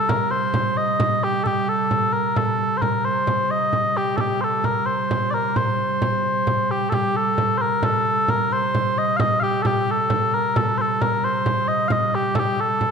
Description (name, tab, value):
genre	medieval dance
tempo	88 BPM (dotted quarters)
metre	6/8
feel	straight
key	C dorian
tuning	A4 = 440 Hz
part	mellow small bagpipes	melody	0.0-12.9 s	G4 to F5	-20 LUFS	left 1 dB	none
part	pipe organ, stopped flute	drone	0.0-12.9 s	C3 to G3	-26 LUFS	right 4 dB	none
part	frame drum	percussion	0.1-12.9 s	none	-26 LUFS	right 1 dB	none
room	wet concert hall reverb, RT60 2.0 s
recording	minimal, uncompressed stereo recording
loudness	-19 LUFS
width	side -6 dB against mid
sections	0.0-6.9 A section; 6.9-12.9 A section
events	none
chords	none